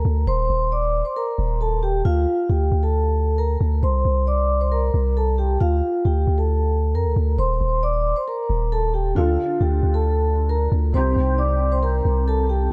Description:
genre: hip hop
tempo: 135 BPM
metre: 4/4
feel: half-time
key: D phrygian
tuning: A4 = 440 Hz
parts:
  - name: long sustained 808-style bass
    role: bass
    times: 0.0-12.7 s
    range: Eb1 to F2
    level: -22 LUFS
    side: equal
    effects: none
  - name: vibraphone with soft mallets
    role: melody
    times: 0.3-12.7 s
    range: F4 to D6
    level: -25 LUFS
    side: equal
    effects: analog delay
  - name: felt-muted upright piano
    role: accompaniment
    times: 9.1-12.7 s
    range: C3 to A4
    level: -30 LUFS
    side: equal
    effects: ensemble chorus
room: light reverb, small room ambience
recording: none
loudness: -21 LUFS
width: mono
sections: 0.0-12.7 A section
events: none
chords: 0.3 Eb5; 2.1 Dm; 3.8 C5; 5.6 Dm; 7.4 Eb5; 9.2 Dm; 10.9 Cm

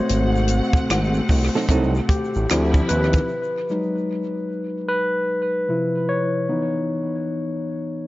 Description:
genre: R&B, neo-soul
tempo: 75 BPM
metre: 4/4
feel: swing 63% on 16ths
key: unclear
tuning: A4 = 440 Hz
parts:
  - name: barky tine electric piano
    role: accompaniment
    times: 0.0-8.1 s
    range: C3 to C#5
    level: -22 LUFS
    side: left 1 dB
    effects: overdrive, tape echo
  - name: dark studio string section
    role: sustained chords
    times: 0.0-3.3 s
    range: B#2 to F#5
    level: -28 LUFS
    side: right 1 dB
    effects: none
  - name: fat analog bass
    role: bass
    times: 0.1-3.2 s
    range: G#1 to D#2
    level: -20 LUFS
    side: equal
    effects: none
  - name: compact cocktail drum kit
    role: drums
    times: 0.1-3.3 s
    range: hi-hat, kick drum, rim click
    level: -22 LUFS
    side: equal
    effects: tape echo
  - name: egg shaker and finger snaps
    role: percussion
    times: 0.1-3.3 s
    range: none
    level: -36 LUFS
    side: right 6 dB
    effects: tape echo
  - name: hollow-body jazz guitar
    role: second line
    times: 1.6-1.9 s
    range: F#3 to A4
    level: -24 LUFS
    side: right 4 dB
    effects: none
room: light reverb, studio reverb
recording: echo-heavy mix, nothing above 7.6 kHz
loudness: -19 LUFS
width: side -17 dB against mid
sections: 0.0-3.3 A section; 3.3-8.1 B section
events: tine electric piano solo 0.0-3.3, 3.3-8.1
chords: 0.0 G#7b9; 2.5 Dm9; 3.3 B6/F#; 5.7 Cadd11; 6.5 C#m9/E

